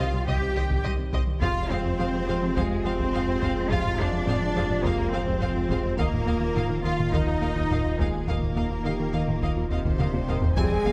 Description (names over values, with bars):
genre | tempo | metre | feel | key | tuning
cinematic, hybrid orchestral and electronic film score | 105 BPM | 4/4 | straight | unclear | A4 = 440 Hz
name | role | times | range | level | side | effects
rich symphonic violin section | melody | 0.0-10.9 s | Eb5 to Ab5 | -40 LUFS | equal | none
rich symphonic violin section | second line | 0.0-10.9 s | Ab4 to Ab5 | -40 LUFS | equal | none
rich symphonic viola section | accompaniment | 0.0-10.9 s | Bb3 to Eb5 | -40 LUFS | equal | none
warm French horn section | sustained chords | 0.0-10.9 s | G3 to Ab4 | -36 LUFS | equal | none
warm trombone section | sustained chords | 0.0-10.8 s | C3 to G3 | -38 LUFS | equal | none
thumb-piano-like synth pluck | arpeggios | 0.0-10.9 s | C3 to F4 | -37 LUFS | equal | none
rubbery square bass | riff | 0.0-10.9 s | C2 to F3 | -34 LUFS | equal | none
dark symphonic double bass section | bass | 0.0-10.9 s | C2 to F2 | -36 LUFS | equal | none
rich symphonic cello section | bass | 0.0-10.9 s | C3 to G4 | -33 LUFS | equal | none
sub bass with octave | bass | 0.0-10.9 s | Eb1 to C2 | -35 LUFS | equal | none
taiko ensemble | drums | 0.3-10.9 s | none | -33 LUFS | equal | none
impact | sound effects | 10.6-10.9 s | none | -35 LUFS | equal | none
room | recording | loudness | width
wet scoring stage reverb, RT60 1.6 s | none | -26 LUFS | mono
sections
0.0-10.6 A section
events
drum fill 10.0-10.6; impact 10.6-10.9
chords
0.0 Cm; 1.4 Fm; 6.0 Ebsus2